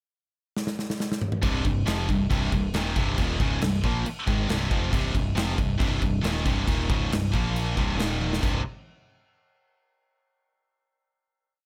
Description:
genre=heavy metal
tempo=137 BPM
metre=4/4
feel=straight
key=C minor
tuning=A4 = 440 Hz
part: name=big rock drum kit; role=drums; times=0.6-8.5 s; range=crash cymbal, kick drum, snare drum, toms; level=-30 LUFS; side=equal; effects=none
part: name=scooped high-gain guitar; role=riff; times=1.4-8.6 s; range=C2 to Bb3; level=-33 LUFS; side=equal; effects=distortion
part: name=tight distorted guitar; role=riff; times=1.4-8.6 s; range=C2 to Bb3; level=-32 LUFS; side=equal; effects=distortion
part: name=growling picked electric bass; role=bass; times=1.4-8.6 s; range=C1 to Bb1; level=-31 LUFS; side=equal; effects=overdrive
room=little or no reverb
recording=none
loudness=-26 LUFS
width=mono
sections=0.0-1.4 pickup bar; 1.4-8.4 riff; 8.4-10.2 final chord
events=drum fill 0.5-1.4, 8.2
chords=0.0 N.C.; 1.4 Cm; 7.3 Bb5; 7.8 C5; 8.0 Eb5; 8.4 C5

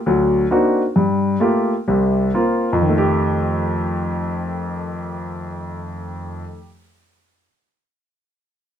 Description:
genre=solo jazz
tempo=119-138 BPM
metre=4/4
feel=swing 65% on 8ths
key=F mixolydian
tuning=A4 = 440 Hz
part: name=warm grand piano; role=solo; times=0.1-6.7 s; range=C2 to G4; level=-17 LUFS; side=equal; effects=none
room=light reverb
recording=none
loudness=-16 LUFS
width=side -9 dB against mid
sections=0.0-2.9 A section; 2.9-6.9 B section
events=slowing down 0.0-2.9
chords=0.1 D7b9b13; 1.0 Gm9; 1.9 C7sus4; 2.9 F9

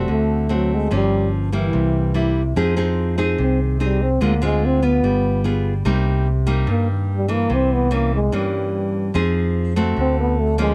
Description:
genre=bossa nova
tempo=146 BPM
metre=4/4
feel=straight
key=unclear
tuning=A4 = 439 Hz
part: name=breathy trombone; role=melody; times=0.0-10.7 s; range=Eb3 to C4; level=-23 LUFS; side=equal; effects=none
part: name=nylon-string guitar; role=accompaniment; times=0.0-10.7 s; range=G2 to Ab4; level=-24 LUFS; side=equal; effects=none
part: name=fingered electric bass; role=bass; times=0.0-10.7 s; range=G1 to G2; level=-23 LUFS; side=equal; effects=none
room=little or no reverb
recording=close, detailed microphones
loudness=-19 LUFS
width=mono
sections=0.0-2.6 A section; 2.6-10.7 B section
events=trombone solo 2.6-10.7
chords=0.1 D7; 0.9 Gm7b5; 1.7 C7; 2.6 Fm7; 4.2 Dm7b5; 5.0 G7b9; 5.9 Cm7; 7.5 C7b9; 9.2 Fm7; 10.0 D7

